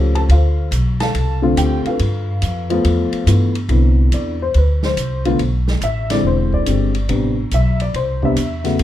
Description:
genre	jazz piano trio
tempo	141 BPM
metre	4/4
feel	swing 66% on 8ths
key	C major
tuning	A4 = 439 Hz
part	dark upright piano	melody	0.0-8.8 s	C3 to A5	-19 LUFS	left 2 dB	none
part	upright bass	bass	0.0-8.8 s	E1 to B2	-16 LUFS	equal	none
part	open jazz drum kit	drums	0.2-8.8 s	hi-hat, kick drum, ride cymbal, snare drum	-28 LUFS	right 2 dB	none
room	light reverb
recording	none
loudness	-14 LUFS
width	side -12 dB against mid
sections	0.0-3.7 A section; 3.7-8.8 B section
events	upright piano solo 3.7-8.8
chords	0.3 Dm7; 2.0 G13; 3.7 Cmaj9; 5.4 Asus2; 6.2 E7alt; 7.1 Am11

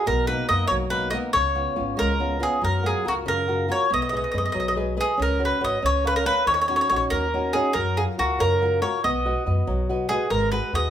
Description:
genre	italian folk, Italian serenade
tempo	94 BPM (dotted quarters)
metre	6/8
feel	straight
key	F# major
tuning	A4 = 441 Hz
part	mandolin	melody	0.0-10.9 s	F#4 to D#5	-22 LUFS	equal	none
part	flamenco guitar	accompaniment	0.0-10.9 s	B2 to E#5	-27 LUFS	left 2 dB	none
part	upright bass	bass	0.1-10.9 s	G#1 to F#2	-28 LUFS	equal	none
room	moderate large studio reverb, RT60 0.9 s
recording	band playing live in one room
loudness	-20 LUFS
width	side -10 dB against mid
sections	0.0-10.9 A section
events	none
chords	0.1 Bmaj7; 1.3 C#7; 2.6 F#maj7; 3.9 B6; 5.2 C#7sus4; 5.8 C#6; 6.5 D#m7; 7.7 F#maj7; 9.0 B; 10.3 G#m7

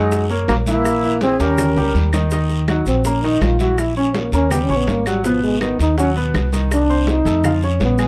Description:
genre	Afro-Cuban jazz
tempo	164 BPM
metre	4/4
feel	straight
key	Eb minor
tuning	A4 = 440 Hz
part	mellow trombone	melody	0.0-8.1 s	F3 to Gb4	-21 LUFS	equal	none
part	breathy mellow silver concert flute	second line	0.0-1.9 s	D#4 to A#4	-27 LUFS	equal	none
part	clear grand piano	accompaniment	0.0-8.1 s	Cb3 to Db6	-25 LUFS	equal	none
part	upright bass	bass	0.0-8.1 s	Ab1 to F#2	-22 LUFS	equal	none
part	bongos	percussion	0.1-8.1 s	none	-32 LUFS	equal	none
part	congas	percussion	0.1-8.1 s	none	-28 LUFS	equal	none
part	guiro	percussion	0.1-8.1 s	none	-36 LUFS	equal	none
part	maracas	percussion	0.1-8.1 s	none	-38 LUFS	equal	none
part	claves	percussion	0.5-8.1 s	none	-32 LUFS	equal	none
room	light reverb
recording	dark, warm production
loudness	-17 LUFS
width	mono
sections	0.0-2.3 A section; 2.3-8.1 B section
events	drum fill 1.4-2.3; trombone solo 2.3-8.1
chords	0.0 D#m7; 0.8 A#dim7; 1.6 D#7; 2.3 Ebm; 3.8 Bbdim; 4.5 Eb7; 5.2 Abm7; 6.7 Cmadd9; 7.4 Bbm7

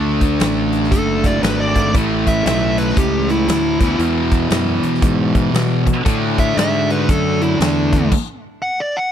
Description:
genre	blues rock power trio and southern rock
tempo	117 BPM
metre	4/4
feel	swing 63% on 8ths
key	unclear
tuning	A4 = 439 Hz
part	thick fuzz guitar	riff	0.0-8.1 s	E2 to D4	-18 LUFS	equal	distortion
part	fuzz fingered electric bass	bass	0.0-8.1 s	F#1 to B2	-21 LUFS	equal	overdrive
part	huge arena drum kit	drums	0.2-8.3 s	crash cymbal, hi-hat, kick drum, snare drum	-20 LUFS	equal	none
part	fuzz lead guitar	melody	0.9-9.1 s	D4 to F#5	-21 LUFS	equal	distortion, tape echo
room	little or no reverb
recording	dry, close 1970s-style studio recording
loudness	-14 LUFS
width	side -9 dB against mid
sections	0.0-9.1 A section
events	stop 8.1-9.1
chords	0.0 D; 1.9 A; 3.7 E; 6.1 D

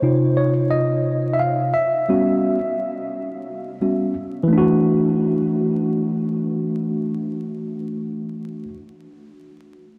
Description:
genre	hip hop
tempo	87 BPM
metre	4/4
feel	swing 59% on 16ths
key	unclear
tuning	A4 = 441 Hz
part	tine electric piano	accompaniment	0.0-8.8 s	C3 to F5	-21 LUFS	equal	none
room	wet huge ambient reverb, RT60 8.2 s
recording	dreamy mix soaked in reverb, vinyl crackle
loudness	-21 LUFS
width	mono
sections	0.0-4.5 A section; 4.5-7.3 B section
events	tine electric piano solo 0.0-4.5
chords	0.0 Cmadd11; 1.8 Em69/G; 4.5 Esus2

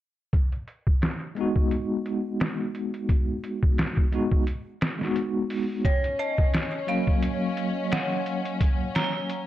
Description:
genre	trip hop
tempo	87 BPM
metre	4/4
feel	swing 56% on 16ths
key	unclear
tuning	A4 = 439 Hz
part	trip hop sampler-style drum kit	drums	0.3-9.5 s	hi-hat, kick drum, snare drum	-24 LUFS	equal	low-pass filter on hats, small room ambience, low-pass filter on kick, low-pass filter on snare
part	tine electric piano	accompaniment	1.4-9.5 s	Gb3 to Gb4	-28 LUFS	equal	medium stereo tremolo, vintage 12-bit sampler grit, tape echo
part	muted symphonic string section	sustained chords	5.8-9.5 s	Db4	-32 LUFS	left 5 dB	none
part	dark detuned synth bell	arpeggios	5.9-9.5 s	Db5 to Bb5	-31 LUFS	right 2 dB	chorus, phaser, tape echo
room	light reverb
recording	none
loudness	-24 LUFS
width	side -13 dB against mid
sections	0.3-9.5 A section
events	none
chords	0.3 Abm7; 5.8 Ebm9

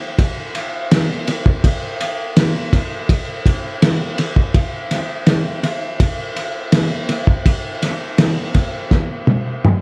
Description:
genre	rock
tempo	83 BPM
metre	4/4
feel	straight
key	none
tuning	none
part	cloth-damped thuddy drum kit	drums	0.2-9.8 s	kick drum, ride cymbal, snare drum, toms	-18 LUFS	equal	analog delay
room	little or no reverb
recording	echo-heavy mix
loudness	-18 LUFS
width	mono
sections	0.0-9.8 A section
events	drum fill 8.9-9.8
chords	none

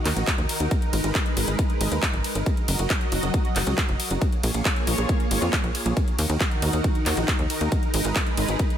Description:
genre	uplifting trance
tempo	137 BPM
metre	4/4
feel	straight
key	Eb minor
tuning	A4 = 440 Hz
part	analog string pad	sustained chords	0.0-8.8 s	Eb3 to Eb5	-28 LUFS	right 1 dB	ensemble chorus, sidechain pumping
part	tight sequencer bass	bass	0.1-8.6 s	Gb1 to F2	-25 LUFS	equal	sidechain pumping
part	big-room dance drum kit	drums	0.1-8.8 s	handclaps, hi-hat, ride cymbal	-28 LUFS	equal	sidechain pumping on hats, studio reverb, sidechain pumping on cymbals
part	electronic kick drum	drums	0.3-8.7 s	none	-24 LUFS	equal	studio reverb
room	little or no reverb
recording	none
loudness	-21 LUFS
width	side -10 dB against mid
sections	0.0-8.8 A section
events	none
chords	0.0 Ebm; 0.7 Abmadd9; 2.5 Ebm/Gb; 4.2 Bbm7; 6.0 Ebm; 7.7 Abmadd9

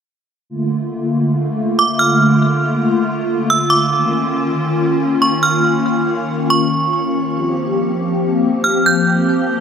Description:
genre	hip hop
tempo	140 BPM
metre	4/4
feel	half-time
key	unclear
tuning	A4 = 437 Hz
part	hollow soft pad	sustained chords	0.5-9.6 s	D3 to G4	-15 LUFS	left 1 dB	ensemble chorus
part	metallic FM bell	melody	1.8-9.1 s	Db6 to G6	-17 LUFS	right 2 dB	chorus, tape echo
room	moderate shimmer reverb, RT60 5.3 s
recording	none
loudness	-14 LUFS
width	side -7 dB against mid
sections	0.5-9.6 A section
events	none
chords	0.5 Bbmaj7; 3.9 Db69; 7.4 C7sus4

